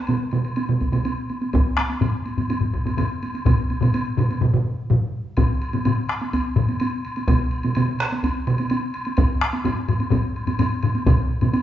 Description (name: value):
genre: japanese traditional, taiko drum ensemble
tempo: 126 BPM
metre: 4/4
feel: straight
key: none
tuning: none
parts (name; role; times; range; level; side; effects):
- solo taiko drums; percussion; 0.1-11.6 s; none; -26 LUFS; right 2 dB; none
- solo taiko drums; percussion; 0.1-11.5 s; none; -23 LUFS; right 3 dB; none
- woodblock; percussion; 0.1-11.6 s; none; -32 LUFS; left 1 dB; none
- solo taiko drums; percussion; 0.8-11.2 s; none; -23 LUFS; equal; none
- taiko ensemble; percussion; 1.5-11.5 s; none; -22 LUFS; left 3 dB; none
room: wet large studio reverb, RT60 1.2 s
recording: band playing live in one room, nothing above 7.6 kHz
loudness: -19 LUFS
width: side -12 dB against mid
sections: 0.0-5.4 A section; 5.4-11.6 B section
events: speeding up 0.0-11.6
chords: none